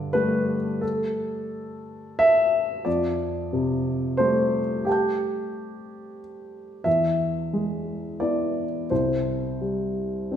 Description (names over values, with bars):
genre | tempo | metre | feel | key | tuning
neoclassical minimalist piano | 89 BPM | 3/4 | rubato | unclear | A4 = 440 Hz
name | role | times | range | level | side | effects
dark upright piano | solo | 0.0-10.4 s | C2 to G6 | -23 LUFS | equal | none
room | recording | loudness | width
wet recital hall reverb, RT60 1.3 s | recorded in a church or concert hall | -22 LUFS | side -9 dB against mid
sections
0.0-10.4 A section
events
none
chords
0.0 Gsus2; 2.9 Fadd9; 6.9 E; 8.9 C5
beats
0.14 | 0.82 1.50 2.19 | 2.86 3.52 4.19 | 4.86 5.52 6.19 | 6.86 7.54 8.21 | 8.90 9.60 10.30